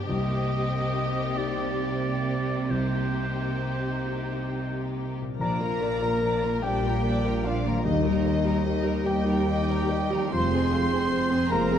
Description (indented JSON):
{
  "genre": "cinematic",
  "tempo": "43-51 BPM (dotted quarters)",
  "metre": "6/8",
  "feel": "rubato",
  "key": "C minor",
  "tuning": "A4 = 437 Hz",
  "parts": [
    { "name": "warm studio violin section", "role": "melody", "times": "0.0-11.8 s", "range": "G4 to Eb5", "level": "-35 LUFS", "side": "left 4 dB", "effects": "none" },
    { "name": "rich studio violin section", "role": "second line", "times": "0.0-11.8 s", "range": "C4 to C6", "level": "-38 LUFS", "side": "left 1 dB", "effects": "none" },
    { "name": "dark grand piano", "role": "accompaniment", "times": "0.0-11.8 s", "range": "Bb1 to C6", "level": "-30 LUFS", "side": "left 1 dB", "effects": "none" },
    { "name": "rich studio viola section", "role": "accompaniment", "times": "0.0-11.8 s", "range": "F3 to Ab4", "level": "-37 LUFS", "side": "right 3 dB", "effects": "none" },
    { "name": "concert harp", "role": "arpeggios", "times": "0.0-11.8 s", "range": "G2 to Eb5", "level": "-35 LUFS", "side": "left 8 dB", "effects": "none" },
    { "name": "rich studio cello section", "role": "bass", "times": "0.0-11.8 s", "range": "Eb2 to C3", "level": "-31 LUFS", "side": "right 3 dB", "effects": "none" },
    { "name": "warm oboe", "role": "second line", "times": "0.1-5.0 s", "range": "C5 to Eb5", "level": "-33 LUFS", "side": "right 2 dB", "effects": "none" },
    { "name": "bright clarinet", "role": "second line", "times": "5.4-11.8 s", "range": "Eb4 to C5", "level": "-34 LUFS", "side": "left 3 dB", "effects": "none" },
    { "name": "mellow hollow concert flute", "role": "second line", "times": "5.4-11.8 s", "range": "Eb5 to C6", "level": "-36 LUFS", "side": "left 2 dB", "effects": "none" },
    { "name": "mellow French horn section", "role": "sustained chords", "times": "5.4-11.8 s", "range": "Eb3 to C4", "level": "-30 LUFS", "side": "left 2 dB", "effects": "none" },
    { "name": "rich studio double bass section", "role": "bass", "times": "5.4-11.8 s", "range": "F1 to Eb2", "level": "-31 LUFS", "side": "right 4 dB", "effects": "none" },
    { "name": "timpani", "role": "percussion", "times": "7.9-9.0 s", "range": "Eb3", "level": "-31 LUFS", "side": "left 2 dB", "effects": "none" }
  ],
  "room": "moderate scoring stage reverb, RT60 1.9 s",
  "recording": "dark, warm production",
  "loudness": "-24 LUFS",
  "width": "side -9 dB against mid",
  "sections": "0.0-5.4 A section; 5.4-11.8 B section",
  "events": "none",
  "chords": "0.1 Cm7; 5.4 Bb; 7.8 Eb; 10.3 Fm",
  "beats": "| 0.09 1.36 | 2.70 4.08 | 5.40 6.63 | 7.85 9.05 | 10.32 11.51"
}